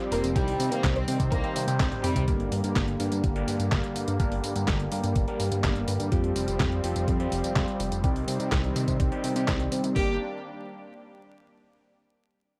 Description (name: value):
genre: italo disco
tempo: 125 BPM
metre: 4/4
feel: straight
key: G minor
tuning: A4 = 440 Hz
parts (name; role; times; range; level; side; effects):
- lush unison pad; sustained chords; 0.0-10.2 s; D3 to D4; -36 LUFS; equal; chorus
- overdriven tine electric piano; stabs; 0.0-10.1 s; G3 to C5; -35 LUFS; equal; phaser, low-pass filter
- detuned 8-bit digital drum machine; drums; 0.0-9.9 s; handclaps, hi-hat, snare drum, tambourine, toms; -34 LUFS; equal; small room ambience
- clear chamber violin section; melody; 0.1-2.2, 10.0-10.1 s; G3 to C5; -35 LUFS; equal; tape echo
- chorused synth bass; bass; 0.1-10.2 s; F1 to C3; -32 LUFS; equal; none
- detuned 8-bit digital drum machine; drums; 0.4-10.1 s; hi-hat, kick drum; -31 LUFS; equal; small room ambience
room: little or no reverb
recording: dry, close 1970s-style studio recording, vinyl crackle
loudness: -27 LUFS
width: mono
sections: 0.0-2.3 A section; 2.3-10.0 B section; 10.0-11.9 C section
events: band accent 1.8; drum fill 1.9-2.3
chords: 0.4 Cm; 2.3 Gm; 6.1 Fsus2; 8.0 Cm; 10.0 Gm